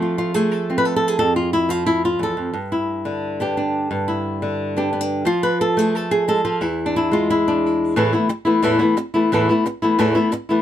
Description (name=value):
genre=flamenco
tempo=177 BPM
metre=4/4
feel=straight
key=unclear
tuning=A4 = 440 Hz
part: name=flamenco guitar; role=solo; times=0.0-10.6 s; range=E2 to B4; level=-17 LUFS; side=equal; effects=none
room=light reverb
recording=close, detailed microphones, faint mains hum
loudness=-17 LUFS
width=side -11 dB against mid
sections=0.0-8.0 A section; 8.0-10.6 B section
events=none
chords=0.0 F; 2.5 G; 5.3 F; 6.6 E; 8.0 Esus4